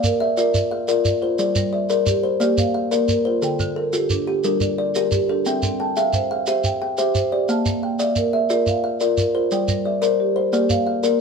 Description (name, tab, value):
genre	southern african traditional, mbira-style interlocking cycle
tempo	118 BPM (dotted quarters)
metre	12/8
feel	straight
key	G dorian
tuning	A4 = 439 Hz
part	kalimba	arpeggios	0.0-11.2 s	D3 to G5	-20 LUFS	left 4 dB	none
part	marimba with soft mallets	arpeggios	0.0-11.2 s	D3 to A5	-23 LUFS	right 7 dB	none
part	shekere	percussion	0.0-11.2 s	none	-24 LUFS	right 2 dB	none
room	light reverb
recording	band playing live in one room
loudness	-18 LUFS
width	side -5 dB against mid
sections	0.0-1.4 A section; 1.4-11.2 A section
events	none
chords	0.0 Bb; 1.4 Gm; 2.4 Bb; 3.4 Dm; 4.4 Gm; 5.5 C; 7.5 Bb; 9.5 Gm; 10.5 Bb